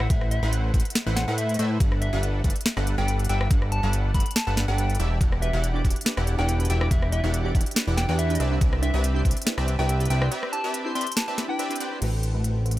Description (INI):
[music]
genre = future bass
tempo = 141 BPM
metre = 4/4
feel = half-time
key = A dorian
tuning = A4 = 439 Hz
[part]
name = soft struck synth lead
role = melody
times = 0.0-11.8 s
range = E5 to C6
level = -32 LUFS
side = left 1 dB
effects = chorus, sidechain pumping, digital delay
[part]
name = supersaw stab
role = riff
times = 0.0-12.8 s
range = E3 to G5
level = -31 LUFS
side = equal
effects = sidechain pumping, low-pass filter
[part]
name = fat analog bass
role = bass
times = 0.0-12.8 s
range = E1 to A2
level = -24 LUFS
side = equal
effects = sidechain pumping
[part]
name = trap drum kit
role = drums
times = 0.0-12.8 s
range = crash cymbal, hi-hat, rim click, snare drum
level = -28 LUFS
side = equal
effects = overdrive
[part]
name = electronic kick drum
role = drums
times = 0.1-9.3 s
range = none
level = -22 LUFS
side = equal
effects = overdrive
[part]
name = glassy digital keys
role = accompaniment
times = 5.4-12.8 s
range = C4 to D5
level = -33 LUFS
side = right 4 dB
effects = chorus, phaser, sidechain pumping, digital delay
[sound]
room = little or no reverb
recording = none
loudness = -22 LUFS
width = side -16 dB against mid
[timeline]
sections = 0.0-12.0 A section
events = drop 0.0-12.0; break 10.3-12.0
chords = 0.0 Am69; 1.8 Gmaj9; 5.0 Em7; 8.4 Cmaj7; 12.0 Am69